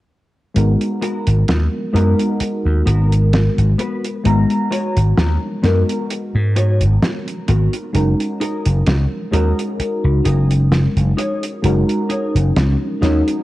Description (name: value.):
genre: vaporwave.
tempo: 65 BPM.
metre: 4/4.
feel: swing 54% on 16ths.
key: unclear.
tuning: A4 = 436 Hz.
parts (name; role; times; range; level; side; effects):
mellow FM electric piano; accompaniment; 0.5-13.4 s; G#3 to A#5; -20 LUFS; equal; phaser, lush chorus, analog delay.
vintage slap bass; bass; 0.6-13.2 s; F#1 to G#2; -14 LUFS; equal; none.
damped 70s drum kit; drums; 0.6-13.4 s; hi-hat, snare drum; -22 LUFS; right 1 dB; none.
mellow electric guitar; riff; 1.0-13.3 s; B3 to C#5; -26 LUFS; left 1 dB; ensemble chorus, vintage 12-bit sampler grit, low-pass filter, analog delay.
room: moderate concert hall reverb, RT60 2.2 s.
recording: dark, warm production, cassette tape.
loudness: -14 LUFS.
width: side -17 dB against mid.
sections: 0.6-13.4 A section.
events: none.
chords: 0.6 G#m9; 7.9 F#69.